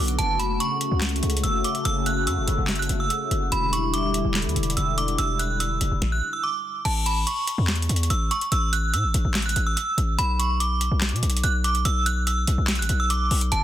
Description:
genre	hip hop, trap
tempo	144 BPM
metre	4/4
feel	half-time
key	B minor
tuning	A4 = 440 Hz
part	metallic FM bell	melody	0.0-13.6 s	A5 to F#6	-26 LUFS	right 2 dB	chorus, tremolo, ping-pong delay
part	sweeping resonant pad	sustained chords	0.0-6.0, 13.5-13.6 s	C#3 to F#4	-29 LUFS	left 3 dB	chorus
part	distorted 808-style bass	bass	0.0-13.6 s	E1 to B2	-24 LUFS	equal	distortion
part	booming analog drum machine	drums	0.1-13.6 s	crash cymbal, handclaps, hi-hat, kick drum, snare drum	-27 LUFS	equal	none
room	digital ambience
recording	dense, heavily limited modern master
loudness	-21 LUFS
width	side -12 dB against mid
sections	0.0-6.9 A section; 6.9-13.6 B section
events	stop 6.0-6.9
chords	0.2 F#m; 3.5 Em7; 6.9 A; 10.2 Bm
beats	| 0.18 0.60 1.02 1.44 | 1.85 2.27 2.69 3.10 | 3.52 3.94 4.35 4.77 | 5.18 5.60 6.02 6.43 | 6.85 7.27 7.68 8.10 | 8.52 8.94 9.35 9.77 | 10.19 10.60 11.02 11.44 | 11.85 12.27 12.69 13.10 | 13.52

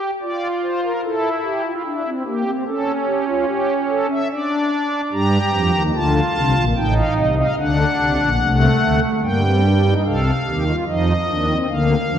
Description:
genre	classical, baroque-style 3-part fugue for pipe organ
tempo	73 BPM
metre	3/4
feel	straight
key	unclear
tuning	A4 = 440 Hz
part	pipe organ, strings celeste	solo	0.0-12.2 s	A1 to Bb5	-16 LUFS	equal	none
room	wet concert hall reverb, RT60 1.8 s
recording	worn, warbling old tape, cassette tape, warbly pitch drift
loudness	-16 LUFS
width	side -9 dB against mid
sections	0.0-10.1 A section; 10.1-12.2 B section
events	none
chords	0.2 Dm/F; 1.9 Em7b5; 2.7 A7/C#; 4.3 N.C.; 5.1 Gm; 6.8 Am7b5; 7.6 D7; 9.2 Gm; 10.1 Cm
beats	| 0.22 1.04 1.85 | 2.66 3.48 4.30 | 5.12 5.94 6.76 | 7.58 8.40 9.23 | 10.05 10.87 11.69

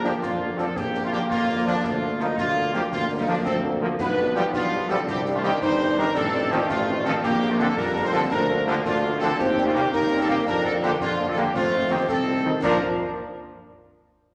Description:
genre	military-style march for wind band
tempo	111 BPM (dotted quarters)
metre	6/8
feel	straight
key	Bb major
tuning	A4 = 441 Hz
part	dark trumpet section	melody	0.0-12.8 s	D4 to C5	-28 LUFS	equal	none
part	clear woodwind section	second line	0.0-12.8 s	F3 to Bb4	-34 LUFS	equal	none
part	warm euphonium	second line	0.0-12.4 s	F3 to D4	-30 LUFS	equal	none
part	mellow French horn section	accompaniment	0.0-12.8 s	Bb2 to D4	-34 LUFS	equal	none
part	bright trombone section	sustained chords	0.0-12.8 s	C3 to D4	-32 LUFS	equal	none
part	clear tuba	bass	0.0-12.8 s	G1 to Bb2	-31 LUFS	equal	none
part	concert snare drum, concert bass drum and clash cymbals	drums	0.0-12.8 s	none	-40 LUFS	equal	none
room	wet recital hall reverb, RT60 1.7 s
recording	none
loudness	-23 LUFS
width	mono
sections	0.0-12.6 A section; 12.6-13.7 B section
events	none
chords	0.0 Bb; 1.8 Bb/D; 4.0 G7/B; 5.1 Cm; 6.2 F7/A; 7.2 Bb; 8.3 Bb/D; 9.4 Cm7/Eb; 10.5 Bb/F; 11.5 F7; 12.6 Bb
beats	0.23 | 0.77 1.30 | 1.84 2.38 | 2.92 3.46 | 4.00 4.54 | 5.08 5.62 | 6.16 6.69 | 7.23 7.77 | 8.31 8.85 | 9.39 9.93 | 10.47 11.01 | 11.55 12.09 | 12.63

